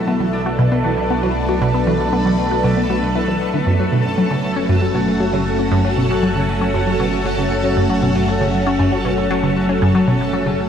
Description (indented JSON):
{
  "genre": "ambient, sequencer-driven space music",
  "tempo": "117 BPM",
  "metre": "4/4",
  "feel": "straight",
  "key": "F# minor",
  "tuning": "A4 = 444 Hz",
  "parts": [
    { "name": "phased string machine", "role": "sustained chords", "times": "0.0-10.7 s", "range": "B2 to E5", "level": "-20 LUFS", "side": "equal", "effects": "ensemble chorus, phaser, shimmer reverb" },
    { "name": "concert harp", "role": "arpeggios", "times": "0.0-10.7 s", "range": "F#3 to A4", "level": "-23 LUFS", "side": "moving between left 3 dB and right 4 dB", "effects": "auto-pan, tape echo" },
    { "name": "analog drone", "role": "bass", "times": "0.2-10.7 s", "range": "F#1 to B1", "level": "-26 LUFS", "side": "equal", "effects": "chorus" },
    { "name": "bubbling stepped-filter texture", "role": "texture", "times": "0.0-10.7 s", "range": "A4 to A5", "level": "-25 LUFS", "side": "equal", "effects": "chorus, built-in reverb, shimmer reverb" },
    { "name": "resonant blip pluck", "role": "riff", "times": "0.1-10.5 s", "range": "F#2 to F#4", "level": "-19 LUFS", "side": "equal", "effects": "phaser, tape echo" }
  ],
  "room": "wet huge ambient reverb, RT60 8.2 s",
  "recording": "none",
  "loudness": "-15 LUFS",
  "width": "side -8 dB against mid",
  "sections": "0.0-10.7 A section",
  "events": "filter sweep on synth arpeggio sound 0.0-10.7",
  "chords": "0.0 Bm7; 3.7 F#m"
}